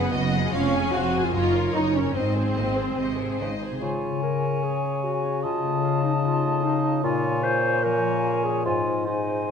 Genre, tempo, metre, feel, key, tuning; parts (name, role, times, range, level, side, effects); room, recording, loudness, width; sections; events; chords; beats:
classical; 148 BPM; 4/4; straight; Db major; A4 = 440 Hz
warm symphonic violin section; melody; 0.0-3.6 s; Bb4 to D#5; -34 LUFS; left 4 dB
warm symphonic violin section; second line; 0.0-3.8 s; F4 to Ab5; -31 LUFS; left 2 dB
warm symphonic viola section; accompaniment; 0.0-3.4 s; B3 to Gb4; -25 LUFS; right 2 dB
concert harp; arpeggios; 0.0-9.5 s; F2 to Bb4; -29 LUFS; left 9 dB
clear chamber cello section; bass; 0.0-3.8 s; F2 to Db3; -30 LUFS; right 3 dB
rich symphonic double bass section; bass; 0.0-3.8 s; F1 to Ab1; -30 LUFS; right 4 dB
dark clarinet; second line; 3.4-9.5 s; Eb4 to C5; -27 LUFS; equal
mellow cor anglais; second line; 3.8-9.5 s; C5 to Eb5; -31 LUFS; right 2 dB
mellow hollow silver concert flute; second line; 3.8-9.5 s; Ab5 to A5; -30 LUFS; left 1 dB
warm bassoon; accompaniment; 3.8-9.5 s; Ab2 to Db3; -29 LUFS; right 2 dB
wet scoring stage reverb, RT60 1.7 s; -22 LUFS; side -6 dB against mid
0.0-3.8 A section; 3.8-9.5 B section
0.0 G#m7/F#; 0.5 Db/F; 1.3 Ebm7/Gb; 2.2 Ab; 3.8 Db; 5.4 F7/Db; 7.0 Bbm7; 8.7 Ab
0.13 | 0.53 0.93 1.33 1.74 | 2.15 2.57 2.99 3.40 | 3.82 4.23 4.63 5.04 | 5.44 5.83 6.24 6.63 | 7.04 7.44 7.84 8.25 | 8.65 9.07 9.48